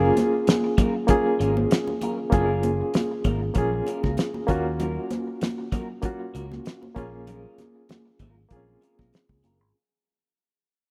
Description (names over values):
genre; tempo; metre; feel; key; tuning
lush 1970s-style soul; 97 BPM; 4/4; swing 54% on 16ths; unclear; A4 = 440 Hz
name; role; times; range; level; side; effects
barky reed electric piano; accompaniment; 0.0-9.8 s; A#3 to G#4; -28 LUFS; equal; overdrive, medium tremolo
electric guitar through a small old amp; riff; 0.0-9.6 s; F#3 to A#4; -39 LUFS; equal; phaser
fingered electric bass; bass; 0.0-9.7 s; F#1 to D#2; -30 LUFS; equal; none
cloth-damped thuddy drum kit; drums; 0.2-9.6 s; hi-hat, kick drum, snare drum; -26 LUFS; equal; none
congas; percussion; 0.2-9.6 s; none; -33 LUFS; equal; none
room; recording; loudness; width
light reverb, small room ambience; rough home demo mix; -24 LUFS; mono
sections
0.0-9.7 A section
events
fade-out 0.0-9.7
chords
0.0 F#maj7; 4.5 D#m7; 7.0 A#m7